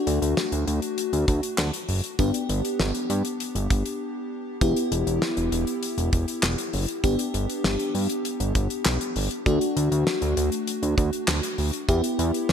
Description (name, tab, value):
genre	synth-pop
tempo	99 BPM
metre	4/4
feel	straight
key	unclear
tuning	A4 = 443 Hz
part	FM electric piano with soft pad layer	accompaniment	0.0-12.5 s	A3 to G4	-26 LUFS	left 2 dB	chorus, shimmer reverb
part	fat analog bass	bass	0.1-12.5 s	E1 to G2	-25 LUFS	right 1 dB	none
part	damped 70s drum kit	drums	0.1-12.5 s	handclaps, hi-hat, kick drum, snare drum	-27 LUFS	equal	none
room	moderate plate reverb, RT60 2.1 s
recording	bright 1980s-style digital production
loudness	-22 LUFS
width	side -8 dB against mid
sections	0.0-12.5 A section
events	break 4.0-4.6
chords	0.0 D; 2.2 G; 4.6 Em; 7.0 G; 9.5 D; 11.9 Em